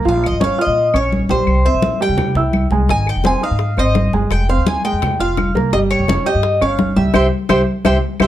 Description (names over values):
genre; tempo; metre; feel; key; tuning
latin, Cuban son and guajira; 169 BPM; 4/4; straight; unclear; A4 = 438 Hz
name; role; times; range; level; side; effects
dark grand piano; arpeggios; 0.0-8.3 s; Eb3 to G6; -19 LUFS; right 2 dB; none
upright bass; bass; 0.0-8.3 s; F1 to C3; -19 LUFS; equal; none
Cuban tres; melody; 0.1-8.3 s; C5 to Ab5; -20 LUFS; left 1 dB; plate reverb
congas; percussion; 0.1-8.3 s; none; -20 LUFS; left 1 dB; none
claves; percussion; 0.2-8.3 s; none; -28 LUFS; left 5 dB; none
bongos; percussion; 2.9-8.3 s; none; -24 LUFS; left 7 dB; none
room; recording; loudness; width
light reverb; dark, warm production; -13 LUFS; side -12 dB against mid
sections
0.0-8.3 A section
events
band accent 7.1-8.3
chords
0.1 Bbm; 1.5 C; 2.9 Ab; 4.3 Fmadd9; 5.7 Eb9/F; 7.1 C